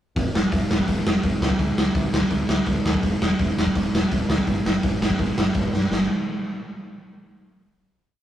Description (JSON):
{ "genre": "punk rock", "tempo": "167 BPM", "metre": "4/4", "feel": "straight", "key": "unclear", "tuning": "A4 = 435 Hz", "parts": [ { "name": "growling picked electric bass", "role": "bass", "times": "0.2-6.1 s", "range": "E1 to G2", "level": "-28 LUFS", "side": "equal", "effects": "overdrive" }, { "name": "raw garage drum kit", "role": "drums", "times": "0.2-6.0 s", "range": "hi-hat, kick drum, snare drum", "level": "-20 LUFS", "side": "equal", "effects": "none" } ], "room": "little or no reverb", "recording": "rough rehearsal-room recording, tube saturation", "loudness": "-20 LUFS", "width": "side -11 dB against mid", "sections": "0.2-5.9 verse; 5.9-7.3 final note", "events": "drum fill 5.7", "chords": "none" }